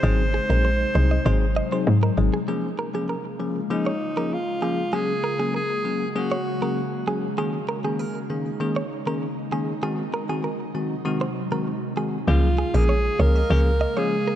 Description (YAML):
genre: afrobeats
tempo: 98 BPM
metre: 4/4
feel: straight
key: Db major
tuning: A4 = 440 Hz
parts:
  - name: breathy alto saxophone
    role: melody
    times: 0.0-7.1, 12.3-14.4 s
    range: Eb4 to C5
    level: -27 LUFS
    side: equal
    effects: tape echo
  - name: bell-like tine electric piano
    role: accompaniment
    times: 0.0-14.2 s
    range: Eb3 to Ab4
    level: -27 LUFS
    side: left 3 dB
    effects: none
  - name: ethereal airy pad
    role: sustained chords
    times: 0.0-14.4 s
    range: C3 to F5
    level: -30 LUFS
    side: left 1 dB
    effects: ensemble chorus, built-in reverb
  - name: woody log drum bass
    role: bass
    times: 0.0-2.3, 12.3-13.9 s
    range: Ab1 to Ab2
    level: -19 LUFS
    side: equal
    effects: none
  - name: direct-recorded clean electric guitar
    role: riff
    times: 0.3-14.4 s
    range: Ab4 to Eb5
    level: -31 LUFS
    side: right 4 dB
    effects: tape echo
room: light reverb, digital ambience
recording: dark, warm production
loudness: -21 LUFS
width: side -11 dB against mid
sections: 0.0-2.5 A section; 2.5-12.3 B section; 12.3-14.4 A section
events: none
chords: 0.0 Ab7; 2.5 Db6; 4.9 Gbadd9; 7.4 Eb7sus4; 9.8 Ab7; 12.3 Db6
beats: | 0.03 0.65 1.26 1.87 | 2.48 3.09 3.71 4.32 | 4.93 5.54 6.16 6.77 | 7.38 7.99 8.60 9.22 | 9.83 10.44 11.05 11.66 | 12.28 12.89 13.50 14.11